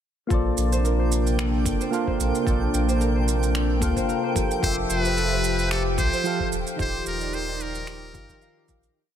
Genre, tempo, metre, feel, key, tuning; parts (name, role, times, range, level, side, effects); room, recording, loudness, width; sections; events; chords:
sunset chillout; 111 BPM; 4/4; swing 55% on 16ths; Bb major; A4 = 440 Hz
soft electric-piano-like synth keys; accompaniment; 0.3-9.0 s; Eb3 to A5; -28 LUFS; moving between left 6 dB and right 6 dB; chorus, auto-pan, vintage 12-bit sampler grit, low-pass filter, ping-pong delay
airy breathy pad; sustained chords; 0.3-8.9 s; C3 to E5; -30 LUFS; left 2 dB; chorus
concert harp; arpeggios; 0.3-9.2 s; G4 to F5; -32 LUFS; right 6 dB; ping-pong delay
warm sub bass; bass; 0.3-8.9 s; Eb1 to D2; -25 LUFS; equal; tube saturation
electronic kick drum; drums; 0.3-8.8 s; -28 LUFS; equal
electronic shaker and finger snaps; drums; 0.3-8.9 s; -33 LUFS; right 4 dB; overdrive
twinkling granular texture; texture; 1.1-9.0 s; G5; -35 LUFS; equal; built-in reverb
trumpet with metal mute; melody; 4.6-8.7 s; A4 to C5; -27 LUFS; equal; tape echo
light reverb, digital ambience; -21 LUFS; side -9 dB against mid
0.3-9.0 groove
fade-out 6.1-9.0
0.3 Bbmaj9; 4.4 Fmaj9; 6.5 Ebmaj9